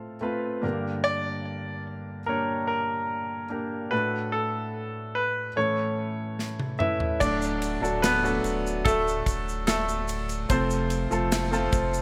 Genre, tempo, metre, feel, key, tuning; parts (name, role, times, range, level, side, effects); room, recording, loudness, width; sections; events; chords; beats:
pop ballad; 73 BPM; 4/4; straight; D major; A4 = 440 Hz
bright concert grand piano; melody; 0.0-11.7 s; A3 to F5; -30 LUFS; equal; delay
clear grand piano; accompaniment; 0.0-12.0 s; G2 to C#5; -32 LUFS; equal; subtle chorus
modern studio drum kit; drums; 6.4-11.9 s; crash cymbal, kick drum, ride cymbal, snare drum, toms; -32 LUFS; equal; gated reverb
warm sub bass; bass; 7.2-12.0 s; D1 to F1; -35 LUFS; equal
egg shaker; percussion; 7.2-12.0 s; -42 LUFS; equal
moderate plate reverb, RT60 2.5 s; bright 1980s-style digital production; -27 LUFS; mono
0.0-7.2 A section; 7.2-12.0 B section
drum fill 6.4-7.2
0.0 F/A; 0.6 Gm; 3.9 D/A; 5.6 A; 7.2 D; 10.5 F
| 0.63 1.46 2.28 3.10 | 3.92 4.74 5.57 6.39 | 7.21 8.03 8.85 9.68 | 10.50 11.32